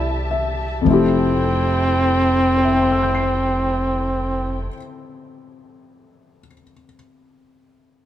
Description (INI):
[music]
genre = jazz ballad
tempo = 35 BPM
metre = 4/4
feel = swing 67% on 8ths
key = F major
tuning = A4 = 439 Hz
[part]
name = breathy trumpet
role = melody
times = 0.0-4.7 s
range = C4 to E4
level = -20 LUFS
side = right 1 dB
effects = none
[part]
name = dark baby grand piano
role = accompaniment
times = 0.0-8.1 s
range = F2 to C7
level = -21 LUFS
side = left 4 dB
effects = none
[part]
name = muted studio string section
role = sustained chords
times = 0.0-4.7 s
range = E4 to A5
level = -29 LUFS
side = left 2 dB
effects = none
[part]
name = upright bass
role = bass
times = 0.0-4.7 s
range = F1 to C2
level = -23 LUFS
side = equal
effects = none
[sound]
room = light reverb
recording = none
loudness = -16 LUFS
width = side -11 dB against mid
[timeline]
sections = 0.9-7.6 A section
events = none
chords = 0.0 Fmaj9